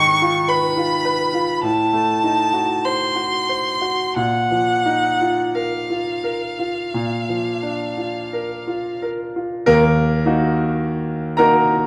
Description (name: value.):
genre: classical, romantic duo for violin and grand piano.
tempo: 42-54 BPM.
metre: 4/4.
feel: rubato.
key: Eb minor.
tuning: A4 = 440 Hz.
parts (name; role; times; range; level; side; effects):
rich violin; melody; 0.0-9.0 s; F5 to Db6; -22 LUFS; equal; none.
bright concert grand piano; accompaniment; 0.0-11.9 s; Eb2 to Bb5; -21 LUFS; equal; none.
room: wet recital hall reverb, RT60 1.7 s.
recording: dark, warm production.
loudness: -20 LUFS.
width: mono.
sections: 0.0-9.7 A section; 9.7-11.9 B section.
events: none.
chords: 0.0 Fm7b5/Ab; 1.6 Adim7; 4.2 Bbsus4; 6.9 Bb; 9.7 Ebm.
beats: 0.49 1.64 2.85 | 4.17 5.55 6.94 8.32 | 9.66 10.81.